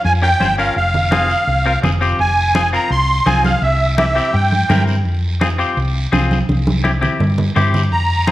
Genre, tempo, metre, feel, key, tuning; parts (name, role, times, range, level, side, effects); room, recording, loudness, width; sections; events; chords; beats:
latin, cumbia; 168 BPM; 4/4; straight; F harmonic minor; A4 = 440 Hz
musette accordion; melody; 0.0-4.8, 7.9-8.3 s; E5 to C6; -16 LUFS; right 1 dB
hollow-body short-scale fingered electric bass; bass; 0.0-8.3 s; F1 to G2; -17 LUFS; equal
guiro; percussion; 0.0-8.3 s; -30 LUFS; right 3 dB
congas; percussion; 0.1-8.3 s; -21 LUFS; right 2 dB
clean electric guitar; accompaniment; 0.2-8.3 s; C4 to C5; -21 LUFS; left 3 dB
moderate large studio reverb, RT60 1.4 s; worn, warbling old tape, cassette tape, warbly pitch drift; -13 LUFS; side -15 dB against mid
0.0-2.2 A section; 2.2-8.3 B section
drum fill 6.5-7.9
0.0 Bbm; 0.8 Fm; 3.6 C7; 5.1 Fm; 6.5 C
0.05 0.40 | 0.76 1.12 1.48 1.83 | 2.19 2.55 2.91 3.26 | 3.62 3.98 4.34 4.70 | 5.05 5.41 5.77 6.13 | 6.49 6.84 7.20 7.56 | 7.92 8.28